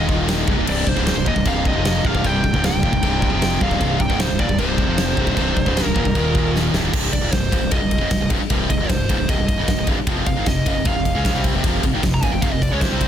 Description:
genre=heavy metal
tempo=153 BPM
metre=4/4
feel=straight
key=C minor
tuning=A4 = 441 Hz
part: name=high-gain lead guitar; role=melody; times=0.0-13.1 s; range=C5 to Bb5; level=-25 LUFS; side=right 1 dB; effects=distortion, ping-pong delay
part: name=clear symphonic string section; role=sustained chords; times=0.0-6.9 s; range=C3 to Eb5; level=-32 LUFS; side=left 2 dB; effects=none
part: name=high-gain distorted guitar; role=riff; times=0.0-13.1 s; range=C2 to Db4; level=-25 LUFS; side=left 11 dB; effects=distortion
part: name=sludgy distorted guitar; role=riff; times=0.0-6.9 s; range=C2 to F3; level=-25 LUFS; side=left 1 dB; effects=overdrive
part: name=tight distorted guitar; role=riff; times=0.0-13.1 s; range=C2 to Db4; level=-24 LUFS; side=right 10 dB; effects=distortion
part: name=fuzz fingered electric bass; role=bass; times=0.0-13.1 s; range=C1 to Db2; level=-24 LUFS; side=equal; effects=overdrive
part: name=big rock drum kit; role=drums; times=0.1-13.1 s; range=china cymbal, crash cymbal, kick drum, ride cymbal, snare drum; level=-21 LUFS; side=equal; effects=none
room=little or no reverb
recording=dense, heavily limited modern master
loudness=-16 LUFS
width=side -10 dB against mid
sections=0.0-6.9 A section; 6.9-13.1 B section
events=drum fill 6.5-6.9; lead electric guitar solo 6.9-13.1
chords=0.5 Cm; 6.2 Eb5; 6.7 Cm; 10.1 F5

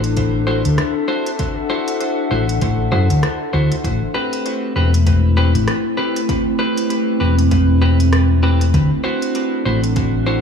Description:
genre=ambient dub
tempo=98 BPM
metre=4/4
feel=swing 58% on 16ths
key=A dorian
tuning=A4 = 442 Hz
part: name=warbly tape-like pad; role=sustained chords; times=0.0-10.4 s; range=A3 to F#5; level=-20 LUFS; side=right 1 dB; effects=chorus, built-in reverb
part: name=hollow-body short-scale fingered electric bass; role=bass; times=0.0-10.4 s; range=E1 to F#2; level=-15 LUFS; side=left 1 dB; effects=none
part: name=organic electronic drum kit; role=drums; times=0.0-10.1 s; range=hi-hat, rim click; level=-28 LUFS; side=equal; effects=dub echo
part: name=electronic kick drum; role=drums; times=0.2-10.1 s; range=none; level=-22 LUFS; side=left 1 dB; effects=none
part: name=clean electric guitar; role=stabs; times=0.5-10.4 s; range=C4 to C5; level=-22 LUFS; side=equal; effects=dub echo
room=light reverb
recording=studio ambience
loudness=-14 LUFS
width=side -6 dB against mid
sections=0.0-10.4 A section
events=none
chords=0.0 D7; 3.8 Am7; 8.7 D7

